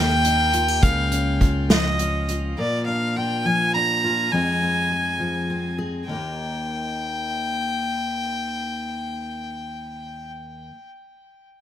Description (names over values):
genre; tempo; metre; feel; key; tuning
indie folk with a building arrangement; 69 BPM (dotted quarters); 6/8; straight; Eb major; A4 = 441 Hz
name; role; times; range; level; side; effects
clear fiddle; melody; 0.0-10.3 s; D5 to Bb5; -24 LUFS; equal; plate reverb, digital delay
fingerpicked steel-string acoustic guitar; accompaniment; 0.0-10.8 s; Eb2 to Ab4; -27 LUFS; left 1 dB; none
fingered electric bass; bass; 0.0-2.5 s; Db2 to Eb2; -24 LUFS; equal; none
unplugged drum kit; drums; 0.2-2.4 s; hi-hat, kick drum, snare drum; -20 LUFS; equal; none
room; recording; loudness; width
light reverb; none; -20 LUFS; side -10 dB against mid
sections
0.0-6.1 A section; 6.1-9.6 B section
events
none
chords
0.0 Eb; 0.8 Db6; 2.6 Bb; 4.3 Fm; 6.1 Eb